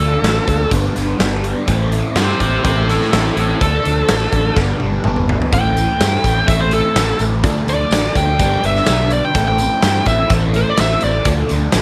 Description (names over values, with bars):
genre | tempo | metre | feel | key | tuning
classic rock | 125 BPM | 4/4 | straight | A minor | A4 = 440 Hz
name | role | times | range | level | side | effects
bluesy overdriven lead guitar | melody | 0.0-11.3 s | E4 to G5 | -20 LUFS | equal | distortion, slapback echo
picked steel-string acoustic guitar | accompaniment | 0.0-11.8 s | A2 to B4 | -30 LUFS | equal | none
crunchy overdriven guitar | riff | 0.0-11.8 s | G2 to F4 | -24 LUFS | equal | phaser
fuzz fingered electric bass | bass | 0.0-11.8 s | G1 to G2 | -21 LUFS | equal | overdrive
big rock drum kit | drums | 0.2-11.8 s | hi-hat, kick drum, snare drum, toms | -22 LUFS | equal | none
overdriven reed electric piano | accompaniment | 5.5-11.8 s | E4 to D5 | -32 LUFS | equal | none
tambourine | percussion | 5.5-11.8 s | none | -35 LUFS | equal | none
room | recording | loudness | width
small room ambience | none | -16 LUFS | mono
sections
0.0-11.8 A section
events
lead electric guitar solo 0.0-11.8; drum fill 4.6-5.5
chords
0.0 Dm; 0.7 G; 1.7 Am; 3.6 Dm; 4.6 G; 5.5 Am; 7.4 Dm; 8.4 G; 9.4 Am; 11.3 Dm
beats
0.24 0.72 1.20 | 1.68 2.17 2.65 3.13 | 3.61 4.09 4.57 5.05 | 5.53 6.00 6.48 6.96 | 7.44 7.92 8.40 8.88 | 9.35 9.83 10.31 10.79 | 11.26 11.74